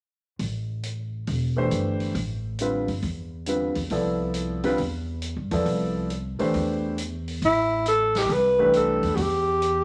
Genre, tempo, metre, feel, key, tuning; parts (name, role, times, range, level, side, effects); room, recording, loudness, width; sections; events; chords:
modal jazz; 137 BPM; 4/4; swing 67% on 8ths; A minor; A4 = 439 Hz
upright bass; bass; 0.4-9.8 s; E1 to G2; -32 LUFS; equal
swinging big-band drum kit; drums; 0.4-9.8 s; hi-hat, snare drum; -40 LUFS; equal
warm concert grand piano; accompaniment; 1.6-9.2 s; D3 to D5; -27 LUFS; equal
breathy alto saxophone; melody; 7.5-9.8 s; E4 to B4; -23 LUFS; equal
moderate large studio reverb, RT60 1.1 s; -25 LUFS; mono
0.4-7.4 A section; 7.4-9.8 B section
0.4 Am11